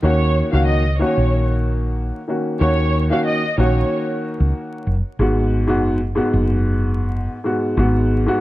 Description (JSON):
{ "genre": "hip hop", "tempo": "93 BPM", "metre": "4/4", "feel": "swing 55% on 16ths", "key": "Eb minor", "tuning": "A4 = 440 Hz", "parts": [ { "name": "warm symphonic violin section", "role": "melody", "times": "0.0-4.1 s", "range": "Db5 to F5", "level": "-23 LUFS", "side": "right 2 dB", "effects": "high-pass filter, low-pass filter, tape echo" }, { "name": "dark upright piano", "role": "accompaniment", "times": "0.0-8.4 s", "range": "Ab2 to Gb4", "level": "-20 LUFS", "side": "left 1 dB", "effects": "cassette tape, high-pass filter, low-pass filter" }, { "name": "woody fretless electric bass", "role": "bass", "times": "0.0-8.3 s", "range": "Gb1 to Eb2", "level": "-18 LUFS", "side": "equal", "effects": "none" } ], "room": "small room ambience", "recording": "dark, warm production, vinyl crackle", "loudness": "-16 LUFS", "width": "side -16 dB against mid", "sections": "0.0-8.4 A section", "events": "none", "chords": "0.0 Ebm7; 5.2 Abm7", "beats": "| 0.03 0.68 1.32 1.97 | 2.61 3.26 3.90 4.55 | 5.19 5.84 6.48 7.13 | 7.77" }